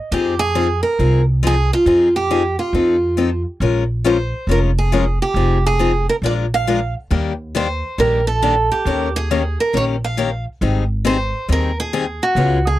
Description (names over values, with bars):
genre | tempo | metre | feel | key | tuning
acoustic string swing (jazz manouche) | 137 BPM | 4/4 | swing 62% on 8ths | F minor, Bb minor from 3.6 s | A4 = 439 Hz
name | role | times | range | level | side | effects
picked steel-string acoustic guitar | melody | 0.0-12.8 s | F4 to F5 | -19 LUFS | right 2 dB | none
picked steel-string acoustic guitar | accompaniment | 0.1-12.6 s | Db3 to Bb4 | -19 LUFS | left 5 dB | none
upright bass | bass | 0.1-12.8 s | F1 to F2 | -19 LUFS | equal | none
room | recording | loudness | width
little or no reverb | dry, close 1970s-style studio recording | -15 LUFS | side -15 dB against mid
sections
0.0-3.6 A section; 3.6-12.8 B section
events
none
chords
0.1 Fm7; 2.7 F7; 3.6 Bbm7; 5.4 Fm7; 6.2 Bb7; 7.1 Ebmaj7; 8.9 Eb7; 10.6 Abmaj7